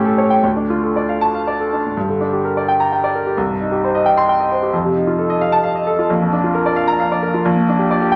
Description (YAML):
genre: classical, virtuoso piano study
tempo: 77-91 BPM (dotted quarters)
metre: 6/8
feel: rubato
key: G minor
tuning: A4 = 437 Hz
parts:
  - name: warm grand piano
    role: solo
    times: 0.0-8.2 s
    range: Bb1 to C6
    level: -17 LUFS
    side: equal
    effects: none
room: wet large studio reverb, RT60 0.9 s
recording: none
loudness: -17 LUFS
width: mono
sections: 0.0-2.0 A section; 2.0-8.2 B section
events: none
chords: 0.4 Dm; 2.0 Gm; 3.4 Cm; 4.7 F7; 6.1 Bb; 7.4 Gm/Bb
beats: | 0.44 1.21 | 1.98 2.68 | 3.37 4.06 | 4.73 5.41 | 6.10 6.76 | 7.44 8.12